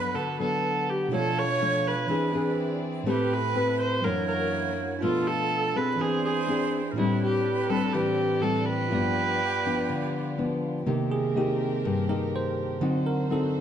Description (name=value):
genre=bossa nova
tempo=123 BPM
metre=4/4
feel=straight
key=unclear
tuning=A4 = 437 Hz
part: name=rich viola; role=melody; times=0.0-10.4 s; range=E4 to C#5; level=-28 LUFS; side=right 1 dB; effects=none
part: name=breathy jazz flute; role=second line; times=0.0-10.6 s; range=G4 to D5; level=-33 LUFS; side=right 6 dB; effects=none
part: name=bell-like tine electric piano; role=accompaniment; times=0.0-13.6 s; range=A2 to E5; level=-30 LUFS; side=right 4 dB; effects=none
part: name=nylon-string guitar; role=accompaniment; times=0.0-13.6 s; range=F#2 to B4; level=-29 LUFS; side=left 4 dB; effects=none
part: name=rich studio violin section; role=sustained chords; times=0.0-13.6 s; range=A3 to D5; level=-37 LUFS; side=equal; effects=none
room=moderate large studio reverb, RT60 1.2 s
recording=dark, warm production, nothing above 10.6 kHz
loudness=-24 LUFS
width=side -9 dB against mid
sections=0.0-10.9 A section; 10.9-13.6 B section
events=tine electric piano solo 10.9-13.6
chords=0.0 Gmaj7; 1.1 Bm7b5; 2.1 E7b13; 3.1 Am9; 4.0 F#7b13; 5.0 Bm7b5; 6.0 Eaug7; 7.0 Am11; 8.9 G7; 10.9 Cm7; 12.8 D7b9